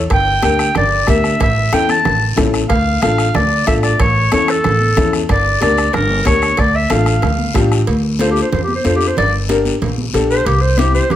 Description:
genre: latin, cumbia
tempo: 185 BPM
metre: 4/4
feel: straight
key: D harmonic minor, D minor from 7.9 s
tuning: A4 = 440 Hz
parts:
  - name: upright bass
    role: bass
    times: 0.0-11.2 s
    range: G1 to F2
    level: -17 LUFS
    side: equal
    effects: none
  - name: warm clarinet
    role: melody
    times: 0.1-11.2 s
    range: G4 to A5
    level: -16 LUFS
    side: equal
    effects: none
  - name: bombo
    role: percussion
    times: 0.1-7.9 s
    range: none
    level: -20 LUFS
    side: equal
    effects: none
  - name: cowbell and timbales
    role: percussion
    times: 0.1-11.2 s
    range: none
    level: -28 LUFS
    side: right 6 dB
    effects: none
  - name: guiro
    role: percussion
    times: 0.1-11.2 s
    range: none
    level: -29 LUFS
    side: left 8 dB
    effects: none
  - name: congas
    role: percussion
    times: 0.3-11.2 s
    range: none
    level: -24 LUFS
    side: right 3 dB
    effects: none
  - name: dark upright piano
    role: accompaniment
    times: 0.4-11.0 s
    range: C4 to Bb4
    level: -19 LUFS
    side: left 4 dB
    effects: none
room: light reverb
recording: none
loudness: -12 LUFS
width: side -12 dB against mid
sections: 0.0-7.9 A section; 7.9-11.2 B section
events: clarinet solo 7.9-11.2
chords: 0.1 Gm; 1.4 A; 2.7 Dm; 4.0 A; 5.3 Gm; 6.6 Dm; 9.2 Gm; 10.5 C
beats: | 0.11 0.43 0.75 1.08 | 1.40 1.73 2.05 2.37 | 2.70 3.02 3.34 3.67 | 3.99 4.32 4.64 4.96 | 5.29 5.61 5.93 6.26 | 6.58 6.90 7.23 7.55 | 7.87 8.20 8.52 8.85 | 9.17 9.49 9.82 10.14 | 10.46 10.79 11.11

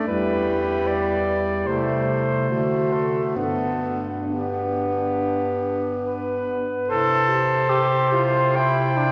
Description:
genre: classical, lyrical piece for single-reed quartet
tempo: 66-76 BPM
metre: 4/4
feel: rubato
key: G major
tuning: A4 = 442 Hz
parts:
  - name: mellow soprano saxophone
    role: melody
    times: 0.0-9.1 s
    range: G4 to G5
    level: -27 LUFS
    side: equal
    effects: none
  - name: clear alto saxophone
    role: second line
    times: 0.0-9.1 s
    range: D4 to G4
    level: -32 LUFS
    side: equal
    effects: none
  - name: clear tenor saxophone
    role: accompaniment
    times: 0.0-9.1 s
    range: G3 to A4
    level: -26 LUFS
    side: equal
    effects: none
  - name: clear bass clarinet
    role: bass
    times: 0.0-9.1 s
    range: E2 to D3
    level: -30 LUFS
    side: equal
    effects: none
room: wet cathedral reverb, RT60 4.0 s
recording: none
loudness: -22 LUFS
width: mono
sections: 0.0-6.9 A section; 6.9-9.1 B section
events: none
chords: 0.1 Em; 1.7 Am/C; 2.5 D7; 3.3 G; 6.9 C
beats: | 0.07 0.86 1.66 2.49 | 3.35 4.25 5.13 6.00 | 6.88 7.68 8.55

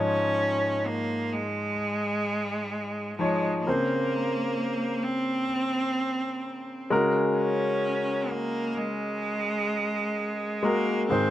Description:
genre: pop ballad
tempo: 64 BPM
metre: 4/4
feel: straight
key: unclear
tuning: A4 = 440 Hz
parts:
  - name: bright cello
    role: melody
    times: 0.0-11.3 s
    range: Ab3 to Db4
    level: -28 LUFS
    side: right 1 dB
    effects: slapback echo
  - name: warm concert grand piano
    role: accompaniment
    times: 0.0-11.3 s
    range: Ab2 to Db5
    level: -28 LUFS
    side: left 1 dB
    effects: slapback echo
room: little or no reverb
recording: recorded outdoors, with no room sound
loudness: -25 LUFS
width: side -12 dB against mid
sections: 0.0-11.3 A section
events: none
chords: 0.0 Dbadd9; 3.7 Bbmadd9/Db; 6.9 Gbadd9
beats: 0.86 1.80 2.73 | 3.66 4.59 5.52 6.44 | 7.37 8.30 9.23 10.17 | 11.10

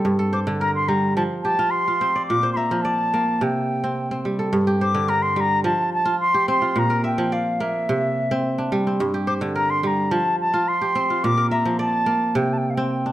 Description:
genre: west african traditional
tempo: 107 BPM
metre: 4/4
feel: straight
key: G dorian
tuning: A4 = 441 Hz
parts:
  - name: kora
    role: arpeggios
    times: 0.0-13.1 s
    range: G2 to E5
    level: -22 LUFS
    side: right 1 dB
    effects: none
  - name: mellow wooden flute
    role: melody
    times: 0.3-13.1 s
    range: E5 to D6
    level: -21 LUFS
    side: left 1 dB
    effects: none
room: moderate recital hall reverb, RT60 1.5 s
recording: close, detailed microphones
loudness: -19 LUFS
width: side -14 dB against mid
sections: 0.0-4.5 A section; 4.5-13.1 A section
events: none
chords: 0.1 Gm; 1.2 F5; 2.3 Bb; 3.4 C5; 4.5 Gm; 5.6 F5; 6.8 Bb; 7.9 C; 9.0 Gm; 10.1 F5; 11.2 Bb; 12.4 C5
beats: | 0.06 0.62 1.18 1.73 | 2.29 2.85 3.41 3.97 | 4.53 5.09 5.65 6.21 | 6.76 7.32 7.88 8.44 | 9.00 9.56 10.12 10.68 | 11.24 11.80 12.36 12.92

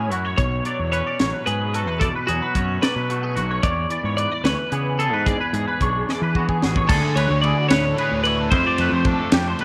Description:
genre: math rock and midwest emo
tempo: 74 BPM (dotted quarters)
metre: 6/8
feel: straight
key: unclear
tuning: A4 = 440 Hz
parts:
  - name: twelve-string electric guitar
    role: melody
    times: 0.0-9.1 s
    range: F#4 to D5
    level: -27 LUFS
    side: equal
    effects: none
  - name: twangy electric guitar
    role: accompaniment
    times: 0.0-9.6 s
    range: E2 to G#4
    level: -30 LUFS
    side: equal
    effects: none
  - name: twangy electric guitar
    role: arpeggios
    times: 0.0-9.6 s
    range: F#4 to D5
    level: -29 LUFS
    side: equal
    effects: ensemble chorus
  - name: fuzz fingered electric bass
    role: bass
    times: 0.0-9.5 s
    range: A1 to E3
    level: -27 LUFS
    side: equal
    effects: overdrive
  - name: crisp fusion drum kit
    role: drums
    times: 0.1-9.6 s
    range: crash cymbal, hi-hat, kick drum, ride cymbal, snare drum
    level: -25 LUFS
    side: equal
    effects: none
  - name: crunchy overdriven guitar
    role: riff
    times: 6.9-9.6 s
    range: D3 to F#4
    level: -29 LUFS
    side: equal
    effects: spring reverb
room: light reverb, small room ambience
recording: none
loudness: -21 LUFS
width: mono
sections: 0.0-6.9 A section; 6.9-9.6 B section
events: drum fill 6.1-6.9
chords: 0.4 Bm9; 6.9 Dmaj9#11; 8.5 F69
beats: | 0.39 1.20 | 2.02 2.83 | 3.65 4.46 | 5.27 6.08 | 6.89 7.70 | 8.51 9.32

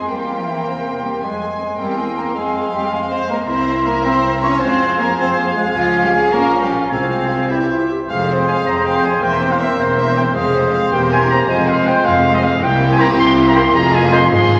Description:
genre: quick classical-period movement for symphony orchestra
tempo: 106 BPM (dotted quarters)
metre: 6/8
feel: straight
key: F minor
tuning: A4 = 444 Hz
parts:
  - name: rich chamber violin section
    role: melody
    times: 0.0-14.6 s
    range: G4 to Ab5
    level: -27 LUFS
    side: equal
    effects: none
  - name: mellow hollow concert flute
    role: second line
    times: 0.0-14.2 s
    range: C5 to Db6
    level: -26 LUFS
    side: equal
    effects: none
  - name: warm clarinet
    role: second line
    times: 0.0-14.2 s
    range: Ab3 to Bb4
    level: -25 LUFS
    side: equal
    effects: none
  - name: warm oboe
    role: second line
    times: 0.0-14.2 s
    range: C5 to Db6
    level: -26 LUFS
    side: equal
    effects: none
  - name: warm studio violin section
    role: second line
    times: 0.0-14.6 s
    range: C4 to Db5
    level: -28 LUFS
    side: equal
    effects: none
  - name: mellow bassoon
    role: accompaniment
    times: 0.0-14.2 s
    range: E3 to C4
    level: -28 LUFS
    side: equal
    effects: none
  - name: warm studio viola section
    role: accompaniment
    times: 0.0-14.6 s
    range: Ab3 to Bb4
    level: -30 LUFS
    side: equal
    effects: none
  - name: warm studio cello section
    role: bass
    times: 0.0-14.6 s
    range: C2 to Db4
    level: -25 LUFS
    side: equal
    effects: none
  - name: warm studio double bass section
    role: bass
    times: 0.0-14.6 s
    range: E1 to F2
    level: -26 LUFS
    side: equal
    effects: none
  - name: dark French horn section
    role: sustained chords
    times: 0.5-14.6 s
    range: G3 to F4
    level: -25 LUFS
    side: equal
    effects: none
  - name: mellow trumpet section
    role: stabs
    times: 8.1-14.6 s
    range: C5 to C6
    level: -20 LUFS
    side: equal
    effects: none
room: wet scoring stage reverb, RT60 1.8 s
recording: none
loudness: -16 LUFS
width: mono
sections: 0.0-8.1 A section; 8.1-14.6 A section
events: none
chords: 0.1 C7/E; 1.2 Fm; 1.8 C7/E; 2.4 Fm; 3.5 C7; 4.6 Fm; 5.8 Db; 6.3 Bbm; 6.9 Fm/C; 7.5 C; 8.1 Fm; 9.2 C7/E; 10.4 Fm; 10.9 C7/E; 11.5 Fm; 12.6 C7; 13.7 Fm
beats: | 0.11 0.68 | 1.24 1.81 | 2.37 2.93 | 3.49 4.05 | 4.62 5.19 | 5.76 6.33 | 6.92 7.51 | 8.09 8.66 | 9.23 9.79 | 10.36 10.93 | 11.48 12.05 | 12.61 13.18 | 13.74 14.31

